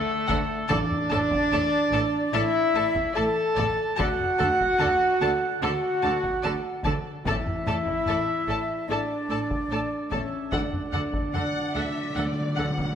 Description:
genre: cinematic, epic orchestral film score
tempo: 73 BPM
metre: 4/4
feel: straight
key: D major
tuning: A4 = 440 Hz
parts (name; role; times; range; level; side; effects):
- mellow hollow silver concert flute; second line; 0.0-12.9 s; A4 to A5; -34 LUFS; left 1 dB; none
- mellow French horn section; sustained chords; 0.0-12.9 s; A3 to A4; -27 LUFS; left 1 dB; none
- mellow trumpet section; stabs; 0.0-12.9 s; A4 to A5; -29 LUFS; right 3 dB; none
- warm symphonic violin section; melody; 0.3-12.6 s; F#5 to A5; -34 LUFS; left 2 dB; none
- dark symphonic violin section; second line; 0.3-12.9 s; D5 to F#5; -37 LUFS; left 3 dB; none
- rich chamber viola section; accompaniment; 0.3-12.7 s; A4; -35 LUFS; equal; none
- rich symphonic cello section; bass; 0.3-12.7 s; A2 to D3; -34 LUFS; right 2 dB; none
- rich symphonic double bass section; bass; 0.3-12.7 s; A1 to D2; -36 LUFS; right 2 dB; none
- taiko ensemble; drums; 0.3-12.9 s; none; -33 LUFS; equal; none
- timpani; percussion; 0.7-1.9, 7.3-12.9 s; A2 to D3; -34 LUFS; equal; none
room: wet scoring stage reverb, RT60 1.6 s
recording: none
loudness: -23 LUFS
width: side -8 dB against mid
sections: 0.0-12.9 A section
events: timpani fill 10.5-12.9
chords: 0.0 D5; 0.7 Asus4; 4.0 D; 7.3 Asus4; 10.5 D

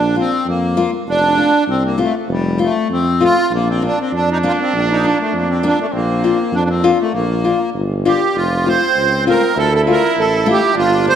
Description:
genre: alpine folk, alpine dance band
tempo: 99 BPM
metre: 2/4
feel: straight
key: Bb major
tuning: A4 = 440 Hz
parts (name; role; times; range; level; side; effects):
- accordion; melody; 0.0-11.2 s; G3 to C5; -16 LUFS; right 2 dB; light tremolo tuning, slapback echo
- warm tuba; bass; 0.0-11.1 s; F1 to F2; -20 LUFS; right 1 dB; none
- picked steel-string acoustic guitar; accompaniment; 0.2-11.2 s; A3 to G4; -19 LUFS; left 5 dB; none
- dark trumpet; second line; 3.5-11.2 s; Bb3 to E4; -22 LUFS; right 4 dB; none
room: moderate concert hall reverb, RT60 1.9 s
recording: none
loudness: -13 LUFS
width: side -9 dB against mid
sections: 0.0-8.3 A section; 8.3-11.2 B section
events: none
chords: 0.0 Bb; 1.1 F; 3.5 Bb; 8.3 F; 9.6 Dm

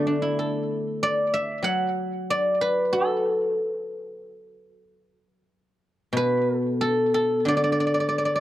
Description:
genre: chinese traditional, Chinese solo plucked strings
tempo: 93 BPM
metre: 4/4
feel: rubato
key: D gong mode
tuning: A4 = 440 Hz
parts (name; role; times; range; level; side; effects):
- guzheng; solo; 0.0-8.4 s; B2 to F#5; -22 LUFS; equal; tape echo
room: light reverb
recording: dry, close 1970s-style studio recording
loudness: -22 LUFS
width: side -14 dB against mid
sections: 0.0-8.4 A section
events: none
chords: none

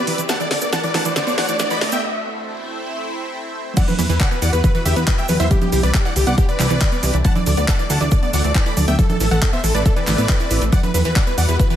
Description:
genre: uplifting trance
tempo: 138 BPM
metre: 4/4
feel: straight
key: E minor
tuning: A4 = 440 Hz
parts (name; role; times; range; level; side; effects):
- big supersaw lead; melody; 0.0-11.8 s; G4 to B5; -24 LUFS; equal; sidechain pumping, tape echo
- lush unison pad; sustained chords; 0.0-11.8 s; E3 to F#5; -28 LUFS; equal; chorus, phaser, sidechain pumping
- wide unison pluck; arpeggios; 0.0-11.7 s; D3 to E4; -25 LUFS; right 3 dB; sidechain pumping, tape echo
- riser; sound effects; 0.0-2.0 s; none; -27 LUFS; equal; none
- house drum kit; drums; 0.1-11.8 s; congas, crash cymbal, handclaps, hi-hat, snare drum; -23 LUFS; right 1 dB; high-pass filter on snare, sidechain pumping on hats, high-pass filter on hats, sidechain pumping on cymbals, high-pass filter on cymbals, sidechain pumping on perc, high-pass filter on perc, high-pass filter on room
- cabasa; percussion; 0.2-11.8 s; none; -31 LUFS; right 4 dB; none
- plucky unison lead; second line; 3.8-11.8 s; G4 to B5; -28 LUFS; equal; sidechain pumping, tape echo
- electronic kick drum; drums; 3.8-11.7 s; none; -17 LUFS; equal; none
- plucky analog bass; bass; 4.0-11.6 s; A1 to E2; -18 LUFS; equal; sidechain pumping
room: light reverb, digital ambience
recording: high-pass filter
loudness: -15 LUFS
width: side -11 dB against mid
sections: 0.0-3.8 A section; 3.8-11.8 B section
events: build-up 0.0-3.8; drum fill 0.0-2.0; riser 0.0-2.0; filter sweep on synth arpeggio sound 0.0-3.8; break 2.0-3.8; drop 3.8-11.8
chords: 0.3 D; 2.0 Am; 3.8 Emadd9; 5.5 Cadd9; 7.2 D; 9.0 Am; 10.7 Emadd9

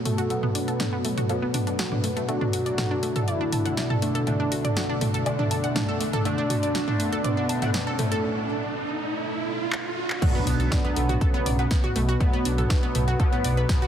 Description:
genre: melodic techno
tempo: 121 BPM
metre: 4/4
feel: straight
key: B minor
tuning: A4 = 440 Hz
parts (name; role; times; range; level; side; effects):
- dark analog pad; sustained chords; 0.0-13.9 s; B2 to D5; -34 LUFS; right 1 dB; none
- swarming drone; drone; 0.0-8.2 s; B2; -38 LUFS; equal; none
- deep dark ambient pad; texture; 0.0-8.2 s; B2 to E5; -37 LUFS; left 1 dB; none
- fat analog lead; melody; 0.1-12.6 s; A3 to A4; -32 LUFS; equal; chorus, sidechain pumping, dub echo
- wide unison pluck; arpeggios; 0.1-13.9 s; A3 to A5; -30 LUFS; right 1 dB; cassette tape, sidechain pumping, ping-pong delay
- house drum kit; drums; 0.1-13.9 s; crash cymbal, handclaps, hi-hat, snare drum, toms; -29 LUFS; equal; small room ambience
- sync-sweep polysynth; stabs; 0.3-13.9 s; B2 to D4; -31 LUFS; left 1 dB; phaser, lush chorus, sidechain pumping, ping-pong delay
- riser and impact; sound effects; 4.6-12.2 s; none; -33 LUFS; right 2 dB; none
- electronic kick drum; drums; 10.2-13.8 s; none; -22 LUFS; equal; small room ambience
- swelling detuned saw bass; bass; 10.5-13.6 s; B1; -24 LUFS; equal; tube saturation, sidechain pumping
room: moderate huge ambient reverb, RT60 8.5 s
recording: heavily compressed radio sound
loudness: -22 LUFS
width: side -9 dB against mid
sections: 0.0-10.2 A section; 10.2-13.9 B section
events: build-up 0.0-10.2; filter sweep on synth arpeggio sound 0.0-10.2; filter sweep on analog polysynth 0.0-10.2; riser 4.6-10.2; break 8.2-10.2; drum fill 9.7-10.2; drop 10.2-13.9; impact 10.2-12.2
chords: 0.0 Bm7; 2.3 D/B

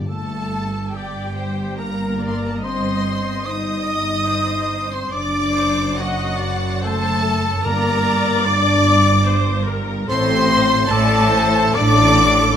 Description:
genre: classical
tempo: 72 BPM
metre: 3/4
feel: uneven beats, rubato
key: G minor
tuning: A4 = 440 Hz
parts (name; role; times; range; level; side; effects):
- warm symphonic violin section; melody; 0.0-12.6 s; F#5 to Eb6; -24 LUFS; left 1 dB; none
- warm symphonic violin section; second line; 0.0-12.6 s; F#4 to Eb5; -27 LUFS; left 3 dB; none
- rich symphonic viola section; accompaniment; 0.0-12.6 s; A4 to Eb5; -25 LUFS; left 2 dB; none
- timpani; percussion; 0.0, 7.7-8.8 s; G2; -31 LUFS; left 1 dB; none
- concert flute; second line; 0.1-12.5 s; F#5 to Eb6; -24 LUFS; equal; none
- warm oboe; second line; 0.1-12.6 s; F#4 to Eb5; -27 LUFS; right 2 dB; none
- mellow French horn section; sustained chords; 0.1-12.6 s; F#3 to Eb4; -23 LUFS; left 4 dB; none
- rich symphonic cello section; bass; 0.1-12.5 s; F#2 to A2; -24 LUFS; right 2 dB; none
- warm symphonic double bass section; bass; 0.1-12.5 s; F#1 to A1; -24 LUFS; right 3 dB; none
room: moderate scoring stage reverb, RT60 1.6 s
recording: none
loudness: -16 LUFS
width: side -9 dB against mid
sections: 0.1-12.6 A section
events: none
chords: 0.1 Gm; 5.1 D/F#; 7.7 Gm; 10.1 D5/A

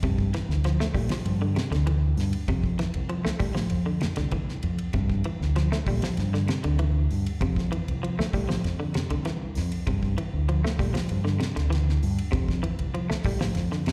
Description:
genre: afrobeat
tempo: 98 BPM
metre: 4/4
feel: straight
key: G dorian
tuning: A4 = 440 Hz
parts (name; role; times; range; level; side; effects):
- clean electric guitar; arpeggios; 0.0-13.9 s; A2 to A3; -33 LUFS; equal; none
- deep dub fingered electric bass; bass; 0.0-13.8 s; C2 to Bb2; -28 LUFS; equal; none
- damped 70s drum kit; drums; 0.0-13.9 s; hi-hat, kick drum, ride cymbal, snare drum; -33 LUFS; equal; none
room: studio reverb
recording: live gig heard through the venue's PA, recital hall reverb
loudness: -26 LUFS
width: mono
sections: 0.0-13.9 A section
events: none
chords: 0.0 G7sus4; 2.5 Fmaj7; 5.0 G7sus4; 7.4 Fmaj7(no3); 9.9 G7sus4; 12.3 Fmaj7

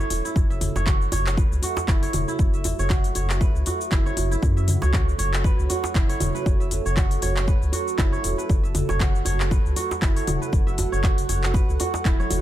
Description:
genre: afro house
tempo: 118 BPM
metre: 4/4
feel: swing 56% on 16ths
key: F# minor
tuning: A4 = 440 Hz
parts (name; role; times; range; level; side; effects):
- dark analog pad; sustained chords; 0.0-12.4 s; F#4 to F#5; -31 LUFS; right 5 dB; chorus, sidechain pumping
- kora; arpeggios; 0.0-12.4 s; E4 to E5; -29 LUFS; right 2 dB; sidechain pumping, tape echo
- round analog bass; bass; 0.0-12.4 s; E1 to F#2; -25 LUFS; equal; tube saturation, sidechain pumping
- afro-pop drum kit; drums; 0.0-12.4 s; handclaps, hi-hat, shaker, toms; -30 LUFS; left 2 dB; none
- djembe; percussion; 0.1-12.4 s; none; -31 LUFS; right 2 dB; none
- electronic kick drum; drums; 0.4-12.2 s; none; -21 LUFS; equal; overdrive
room: digital ambience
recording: none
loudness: -20 LUFS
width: side -13 dB against mid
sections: 0.0-12.4 A section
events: drum fill 12.1-12.4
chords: 0.0 F#m

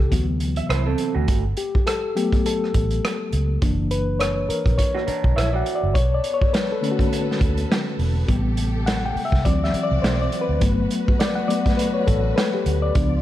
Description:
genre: lush 1970s-style soul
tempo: 103 BPM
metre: 4/4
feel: swing 58% on 16ths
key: unclear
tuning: A4 = 441 Hz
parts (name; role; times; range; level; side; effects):
- reed electric piano; accompaniment; 0.0-13.2 s; C3 to G5; -23 LUFS; left 3 dB; fast tremolo
- vintage muted fingered electric bass; bass; 0.0-13.2 s; E1 to D2; -23 LUFS; equal; none
- vintage drum kit; drums; 0.0-13.1 s; hi-hat, kick drum, rim click, snare drum; -22 LUFS; right 1 dB; none
- electric guitar through a small old amp; riff; 0.6-1.4, 4.9-5.9 s; A3 to E5; -27 LUFS; right 8 dB; none
- warm studio string section; sustained chords; 5.9-13.2 s; A3 to D5; -32 LUFS; equal; none
room: light reverb, small room ambience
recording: dark, warm production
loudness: -19 LUFS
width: side -13 dB against mid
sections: 0.0-13.2 A section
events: reed electric piano solo 0.0-13.2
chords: 0.1 D13; 1.3 Gmaj9; 3.6 F#7b13; 5.9 Bm7; 8.3 Am7; 9.4 D7; 10.6 Gmaj9

